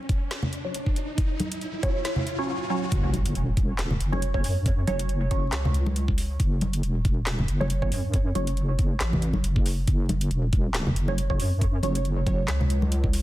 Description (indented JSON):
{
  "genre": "deep dubstep",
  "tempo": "138 BPM",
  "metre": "4/4",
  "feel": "swing 55% on 16ths, half-time",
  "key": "F# minor",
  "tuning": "A4 = 437 Hz",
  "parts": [
    { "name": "riser and impact", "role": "sound effects", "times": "0.0-4.7 s", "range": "none", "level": "-32 LUFS", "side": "equal", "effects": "none" },
    { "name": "electronic kick drum", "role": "drums", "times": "0.1-13.1 s", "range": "none", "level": "-24 LUFS", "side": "equal", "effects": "none" },
    { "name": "garage drum kit", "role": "drums", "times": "0.1-13.2 s", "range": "handclaps, hi-hat, snare drum", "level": "-33 LUFS", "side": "equal", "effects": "high-pass filter on hats, soft clipping on snare, high-pass filter on snare, high-pass filter on room" },
    { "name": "congas", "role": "percussion", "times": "0.4-12.9 s", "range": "none", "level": "-31 LUFS", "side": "equal", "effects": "dub echo" },
    { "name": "filtered dub chord stab", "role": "stabs", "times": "0.6-12.5 s", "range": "F#3 to C#5", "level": "-32 LUFS", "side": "right 2 dB", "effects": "phaser, dub echo" },
    { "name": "deep soft wobble bass", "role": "bass", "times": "2.9-13.2 s", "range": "E1 to F#2", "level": "-26 LUFS", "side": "equal", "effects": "chorus" }
  ],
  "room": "light reverb, digital ambience",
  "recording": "dense, heavily limited modern master, vinyl crackle",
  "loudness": "-23 LUFS",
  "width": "side -15 dB against mid",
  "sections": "0.0-2.9 A section; 2.9-13.2 B section",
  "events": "build-up 0.0-2.9; riser 0.0-2.9; filter sweep on synth stab 0.0-2.9; drop 2.9-13.2; impact 2.9-4.7",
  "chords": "0.0 F#5"
}